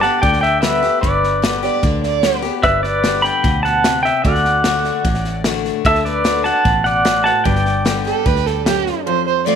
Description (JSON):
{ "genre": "honky-tonk and classic country", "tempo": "149 BPM", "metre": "4/4", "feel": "straight", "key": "G major", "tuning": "A4 = 440 Hz", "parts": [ { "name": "pedal steel guitar", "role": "melody", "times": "0.0-8.6 s", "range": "A4 to B5", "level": "-16 LUFS", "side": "equal", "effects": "none" }, { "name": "picked steel-string acoustic guitar", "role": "accompaniment", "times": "0.0-9.6 s", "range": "F2 to G4", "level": "-23 LUFS", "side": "left 12 dB", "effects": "none" }, { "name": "fingered electric bass", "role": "bass", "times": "0.0-8.9 s", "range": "G1 to D2", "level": "-22 LUFS", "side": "equal", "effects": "none" }, { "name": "natural country drum kit", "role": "drums", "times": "0.0-8.9 s", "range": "hi-hat, kick drum, snare drum", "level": "-21 LUFS", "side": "equal", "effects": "none" }, { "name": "dark fiddle", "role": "second line", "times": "1.6-2.5, 8.1-9.6 s", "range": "G4 to D5", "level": "-18 LUFS", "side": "right 14 dB", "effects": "none" }, { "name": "clear concert grand piano", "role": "accompaniment", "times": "2.6-9.6 s", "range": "F4 to D5", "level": "-30 LUFS", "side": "right 13 dB", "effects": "none" } ], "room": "moderate echo chamber reverb, RT60 2.1 s", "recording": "1960s-style stereo with parts hard left and right", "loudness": "-14 LUFS", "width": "side -7 dB against mid", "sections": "0.0-9.1 A section", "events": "none", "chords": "0.0 G; 4.2 D; 7.5 G", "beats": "0.23 0.63 | 1.03 1.43 1.84 2.24 | 2.64 3.04 3.44 3.85 | 4.25 4.65 5.05 5.45 | 5.85 6.25 6.66 7.06 | 7.46 7.86 8.26 8.66 | 9.06 9.46" }